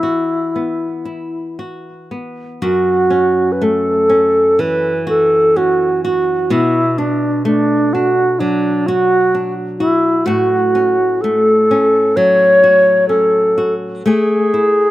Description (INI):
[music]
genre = celtic folk, Celtic slow air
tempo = 63 BPM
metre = 4/4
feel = uneven beats, rubato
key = unclear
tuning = A4 = 438 Hz
[part]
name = mellow alto flute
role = melody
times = 0.0-14.9 s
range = D4 to C#5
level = -12 LUFS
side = equal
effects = slapback echo
[part]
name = flamenco guitar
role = accompaniment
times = 0.0-14.9 s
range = F#2 to G#4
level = -20 LUFS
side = left 1 dB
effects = none
[sound]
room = light reverb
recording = recorded outdoors, with no room sound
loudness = -11 LUFS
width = side -15 dB against mid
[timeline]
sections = 0.0-2.6 A section; 2.6-14.9 B section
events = none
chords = 0.0 Esus2; 2.6 F#m7; 6.5 Bm7; 10.3 F#m/A; 14.1 Amaj7